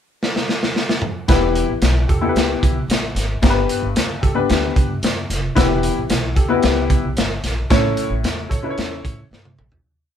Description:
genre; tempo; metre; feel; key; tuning
uptempo 1960s-style soul; 112 BPM; 4/4; straight; E dorian; A4 = 440 Hz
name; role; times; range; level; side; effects
crunchy breakbeat drum kit; drums; 0.2-9.8 s; hi-hat, kick drum, snare drum, toms; -19 LUFS; equal; none
clear upright piano; accompaniment; 1.3-9.2 s; G2 to C#5; -20 LUFS; left 4 dB; none
upright bass; bass; 1.3-9.8 s; E1 to A2; -23 LUFS; equal; none
room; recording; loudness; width
light reverb; band playing live in one room; -16 LUFS; side -9 dB against mid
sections
0.0-1.3 pickup bar; 1.3-9.9 verse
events
drum fill 0.2-1.3, 9.3-9.9; fade-out 7.7-9.9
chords
0.0 N.C.; 1.3 Em; 3.4 G; 5.6 Em; 7.7 A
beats
0.21 0.75 | 1.29 1.82 2.36 2.89 | 3.43 3.96 4.50 5.03 | 5.57 6.10 6.64 7.17 | 7.71 8.24 8.78 9.32

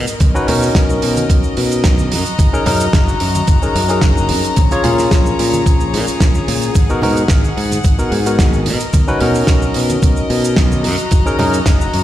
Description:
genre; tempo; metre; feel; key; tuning
nu-disco, nu disco; 110 BPM; 4/4; straight; unclear; A4 = 439 Hz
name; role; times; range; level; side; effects
rich chamber string section; sustained chords; 0.0-12.0 s; F#4 to A#5; -22 LUFS; left 4 dB; sidechain pumping
modern bright fingered electric bass; bass; 0.0-12.0 s; F#1 to B2; -18 LUFS; equal; none
damped 70s drum kit; drums; 0.1-12.0 s; cabasa, hi-hat, snare drum; -21 LUFS; right 2 dB; none
electronic kick drum; drums; 0.2-11.8 s; none; -13 LUFS; equal; none
congas; percussion; 0.2-11.5 s; none; -24 LUFS; right 1 dB; none
barky tine electric piano; accompaniment; 0.3-11.6 s; B3 to C#5; -19 LUFS; left 1 dB; sidechain pumping, digital delay
room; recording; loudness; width
light reverb, small room ambience; played on a big sound system in a bare room, stone room reverb; -12 LUFS; side -13 dB against mid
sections
0.0-12.0 A section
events
none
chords
0.0 Bmaj7; 2.1 F#6; 4.6 A#m7; 6.8 G#m7; 8.7 Bmaj7; 10.8 F#6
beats
| 0.21 0.75 1.30 1.84 | 2.39 2.94 3.48 4.03 | 4.57 5.12 5.66 6.21 | 6.75 7.30 7.84 8.39 | 8.94 9.48 10.03 10.57 | 11.12 11.66

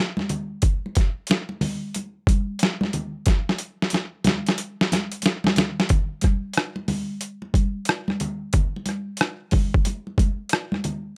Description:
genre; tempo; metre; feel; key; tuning
R&B; 91 BPM; 4/4; swing 63% on 16ths; none; none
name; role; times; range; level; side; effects
boom bap sampler-style drum kit; drums; 0.2-11.0 s; hi-hat, kick drum, rim click, snare drum; -23 LUFS; equal; overdrive
congas; percussion; 0.2-11.0 s; none; -31 LUFS; equal; none
room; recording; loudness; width
little or no reverb; none; -24 LUFS; mono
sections
0.0-5.9 A section; 5.9-11.2 B section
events
drum fill 3.3-5.9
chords
none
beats
| 0.63 1.29 1.95 2.61 | 3.27 3.92 4.58 5.24 | 5.90 6.56 7.22 7.88 | 8.54 9.20 9.86 10.52

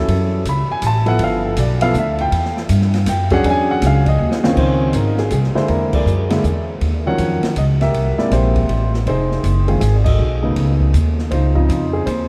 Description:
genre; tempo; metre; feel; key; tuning
jazz piano trio; 160 BPM; 3/4; swing 65% on 8ths; Db major from 4.6 s; A4 = 440 Hz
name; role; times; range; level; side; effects
warm upright piano; melody; 0.0-12.3 s; C3 to B5; -21 LUFS; equal; none
upright bass; bass; 0.0-12.3 s; F1 to G2; -19 LUFS; equal; none
open jazz drum kit; drums; 0.1-12.2 s; crash cymbal, hi-hat, kick drum, ride cymbal, snare drum; -27 LUFS; equal; none
room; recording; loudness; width
moderate huge ambient reverb, RT60 7.6 s; in a vast, echoing space; -17 LUFS; mono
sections
0.0-4.6 A section; 4.6-12.3 B section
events
upright piano solo 0.0-4.6; drum fill 4.2-4.6; band accent 5.9, 10.0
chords
0.1 F#m7; 1.2 G13; 2.3 Emadd9; 3.4 E13; 4.2 C#maj9/D#; 4.6 Dbmaj9; 5.7 E7#11; 6.8 Ebm9; 7.9 C7b13; 9.1 Fm7; 10.2 Cb9; 11.3 Dbmaj9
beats
| 0.07 0.45 0.82 | 1.20 1.57 1.94 | 2.32 2.69 3.07 | 3.44 3.82 4.19 | 4.57 4.94 5.32 | 5.69 6.07 6.44 | 6.82 7.19 7.57 | 7.94 8.31 8.69 | 9.06 9.44 9.81 | 10.19 10.56 10.94 | 11.31 11.69 12.06

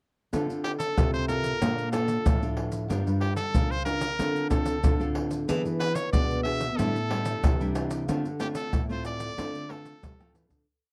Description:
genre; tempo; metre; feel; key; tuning
samba and choro; 93 BPM; 4/4; straight; D minor; A4 = 440 Hz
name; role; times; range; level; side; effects
nylon-string guitar; accompaniment; 0.3-10.6 s; A2 to Bb4; -34 LUFS; equal; none
nylon-string guitar; bass; 0.3-10.6 s; G2 to G3; -33 LUFS; equal; none
maracas, surdo, pandeiro and tamborim; percussion; 0.3-10.7 s; none; -31 LUFS; equal; none
brilliant trumpet; melody; 0.6-10.4 s; G4 to E5; -34 LUFS; equal; none
room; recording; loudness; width
little or no reverb; dry, close 1970s-style studio recording; -27 LUFS; mono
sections
0.3-10.7 A section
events
fade-out 8.1-10.7; drum fill 10.2-10.7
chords
0.3 Dm7; 1.6 Bbmaj7; 2.9 Gm7; 4.2 Dm7; 5.5 E7; 6.8 A7sus4; 8.1 Dm7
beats
| 0.33 0.97 1.61 2.26 | 2.90 3.55 4.19 4.84 | 5.49 6.13 6.78 7.43 | 8.08 8.73 9.38 10.03

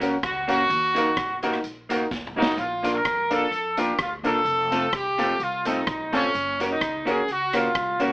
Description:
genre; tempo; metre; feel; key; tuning
ska; 128 BPM; 4/4; swing 54% on 8ths; unclear; A4 = 444 Hz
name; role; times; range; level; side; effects
vintage hollow-body jazz guitar; accompaniment; 0.0-8.1 s; A3 to Bb4; -26 LUFS; right 1 dB; none
warm upright piano; stabs; 0.0-8.1 s; C4 to Bb4; -27 LUFS; left 1 dB; none
upright bass; bass; 0.0-8.1 s; F1 to F2; -40 LUFS; equal; none
street-band drum kit; drums; 0.0-8.1 s; hi-hat, kick drum, rim click, snare drum, toms; -31 LUFS; equal; none
warm horn section; melody; 0.2-8.1 s; Db4 to Bb4; -23 LUFS; equal; none
room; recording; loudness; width
moderate booth ambience, RT60 0.2 s; AM radio sound; -21 LUFS; side -23 dB against mid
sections
0.0-8.1 A section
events
drum fill 2.1-2.6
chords
0.0 Gb; 0.7 Ebm; 2.6 Bb; 4.5 F; 6.3 Gb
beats
0.23 | 0.70 1.17 1.64 2.11 | 2.58 3.05 3.52 3.99 | 4.46 4.93 5.40 5.87 | 6.34 6.81 7.28 7.75

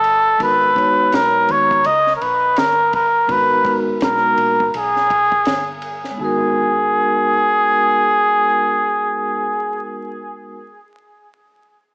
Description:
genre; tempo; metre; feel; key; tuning
hip hop, jazz-hop; 83 BPM; 4/4; swing 60% on 16ths; G# minor; A4 = 441 Hz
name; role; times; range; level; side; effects
trumpet with cup mute; melody; 0.0-9.9 s; G#4 to D#5; -14 LUFS; equal; cassette tape, tape echo
hollow-body short-scale fingered electric bass; bass; 0.0-10.5 s; G1 to D#2; -36 LUFS; equal; tube saturation
compact cocktail drum kit; drums; 0.0-6.2 s; hi-hat, kick drum, ride cymbal, snare drum; -27 LUFS; equal; none
vibraphone with soft mallets; accompaniment; 0.4-10.6 s; G#3 to C#5; -22 LUFS; equal; none
room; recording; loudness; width
moderate small room reverb, RT60 0.6 s; home recording on cassette, vinyl crackle, small speaker sound; -13 LUFS; side -31 dB against mid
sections
0.0-6.2 A section; 6.2-9.1 B section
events
none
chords
0.4 G#m9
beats
| 0.40 1.12 1.84 2.57 | 3.29 4.01 4.74 5.46 | 6.18 6.91 7.63 8.35

